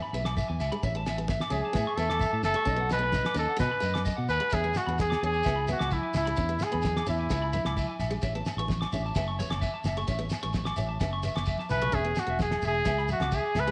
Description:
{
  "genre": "highlife guitar band",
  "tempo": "130 BPM",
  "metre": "4/4",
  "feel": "straight",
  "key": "E major",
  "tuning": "A4 = 439 Hz",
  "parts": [
    { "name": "picked steel-string acoustic guitar", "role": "accompaniment", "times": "0.0-13.7 s", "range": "G#3 to C#4", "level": "-41 LUFS", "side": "equal", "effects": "none" },
    { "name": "clean electric guitar", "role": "arpeggios", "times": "0.0-13.7 s", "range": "C#5 to D6", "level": "-37 LUFS", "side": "equal", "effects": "tape echo" },
    { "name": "fingered electric bass", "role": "bass", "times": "0.1-13.7 s", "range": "E1 to B2", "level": "-34 LUFS", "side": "equal", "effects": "none" },
    { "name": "shekere", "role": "percussion", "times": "0.1-13.7 s", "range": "none", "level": "-43 LUFS", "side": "equal", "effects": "none" },
    { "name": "cloth-damped thuddy drum kit", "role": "drums", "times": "0.2-13.7 s", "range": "kick drum, snare drum", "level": "-35 LUFS", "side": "equal", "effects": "none" },
    { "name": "agogo bells", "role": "percussion", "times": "0.3-13.7 s", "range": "none", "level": "-44 LUFS", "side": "equal", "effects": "none" },
    { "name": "congas", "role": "percussion", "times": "0.4-13.4 s", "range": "none", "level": "-43 LUFS", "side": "equal", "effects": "none" },
    { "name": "warm trumpet", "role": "melody", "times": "1.5-8.0, 11.7-13.7 s", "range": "E4 to B4", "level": "-31 LUFS", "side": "equal", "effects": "none" }
  ],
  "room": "moderate echo chamber reverb, RT60 1.4 s",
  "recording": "nothing above 10.4 kHz",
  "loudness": "-29 LUFS",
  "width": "mono",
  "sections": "0.0-4.5 A section; 4.5-13.7 B section",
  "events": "drum fill 11.5-11.9",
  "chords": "0.0 E; 0.8 A; 2.7 B; 4.5 E; 8.2 A; 11.9 E"
}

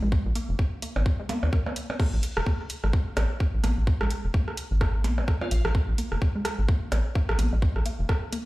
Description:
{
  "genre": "minimal techno",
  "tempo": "128 BPM",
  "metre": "4/4",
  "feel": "swing 58% on 16ths",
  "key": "unclear",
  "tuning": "A4 = 440 Hz",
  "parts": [
    { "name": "resonant blip pluck", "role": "riff", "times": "0.0-8.4 s", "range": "Ab3 to Bb4", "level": "-37 LUFS", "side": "equal", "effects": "phaser, sidechain pumping, dub echo" },
    { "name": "rubbery square bass", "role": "bass", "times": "0.0-8.1 s", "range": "F1 to Eb2", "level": "-25 LUFS", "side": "equal", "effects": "sidechain pumping" },
    { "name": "electronic kick drum", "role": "drums", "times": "0.1-8.2 s", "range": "none", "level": "-24 LUFS", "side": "equal", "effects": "overdrive" },
    { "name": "garage drum kit", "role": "drums", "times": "0.4-8.4 s", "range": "crash cymbal, hi-hat", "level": "-38 LUFS", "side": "right 1 dB", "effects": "overdrive" },
    { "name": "electronic percussion blips and rim click", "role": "percussion", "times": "1.0-8.2 s", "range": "none", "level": "-32 LUFS", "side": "right 1 dB", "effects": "overdrive, dub echo" },
    { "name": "airy dreamy lead", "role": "melody", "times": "5.4-5.6 s", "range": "F4", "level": "-39 LUFS", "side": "equal", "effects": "chorus, dub echo" }
  ],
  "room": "little or no reverb",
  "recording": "played on a big sound system in a bare room, stone room reverb",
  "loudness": "-24 LUFS",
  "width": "side -19 dB against mid",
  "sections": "0.0-8.5 A section",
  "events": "none",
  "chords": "none"
}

